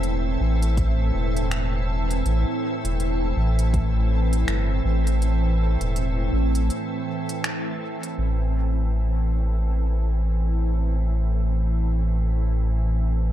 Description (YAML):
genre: ambient dub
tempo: 81 BPM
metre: 4/4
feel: swing 60% on 16ths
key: A minor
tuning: A4 = 440 Hz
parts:
  - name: soft additive organ-like pad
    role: sustained chords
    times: 0.0-13.3 s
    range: A2 to E5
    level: -27 LUFS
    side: right 1 dB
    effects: ensemble chorus, built-in reverb
  - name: warm sub bass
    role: bass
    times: 0.0-13.3 s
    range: E1 to A1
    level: -21 LUFS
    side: equal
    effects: none
  - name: organic electronic drum kit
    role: drums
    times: 0.0-8.2 s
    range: finger snaps, hi-hat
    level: -32 LUFS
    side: equal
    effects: overdrive, low-pass filter on hats, low-pass filter on snare, low-pass filter on room, dub echo
  - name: electronic kick drum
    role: drums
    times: 0.8-3.9 s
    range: none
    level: -26 LUFS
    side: equal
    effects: none
room: little or no reverb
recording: echo-heavy mix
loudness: -21 LUFS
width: side -12 dB against mid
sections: 0.0-8.2 A section; 8.2-13.3 B section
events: break 6.7-8.2; band accent 7.4-7.8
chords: 0.0 Am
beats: 0.04 0.78 1.52 | 2.26 3.00 3.74 4.48 | 5.22 5.96 6.70 7.44 | 8.18 8.92 9.66 10.40 | 11.15 11.89 12.63